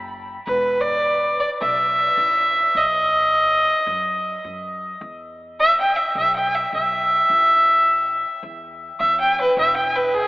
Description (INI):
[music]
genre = acoustic country blues, solo or duo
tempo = 106 BPM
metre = 4/4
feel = swing 62% on 8ths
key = unclear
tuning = A4 = 442 Hz
[part]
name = upright bass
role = bass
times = 0.0-10.3 s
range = E1 to F#2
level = -39 LUFS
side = equal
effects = none
[part]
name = rich fiddle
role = melody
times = 0.5-10.3 s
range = G#4 to G5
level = -17 LUFS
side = equal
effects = none
[sound]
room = wet cathedral reverb, RT60 5.9 s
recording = in a vast, echoing space, telephone sound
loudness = -16 LUFS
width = side -20 dB against mid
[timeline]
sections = 0.0-5.0 A section; 5.0-10.3 B section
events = fiddle solo 5.0-10.3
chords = 0.5 E5; 2.8 B; 5.0 E5; 7.3 A5; 9.6 E5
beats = | 0.48 1.04 1.61 2.18 | 2.75 3.32 3.89 4.46 | 5.02 5.59 6.16 6.73 | 7.30 7.86 8.43 9.00 | 9.56 10.13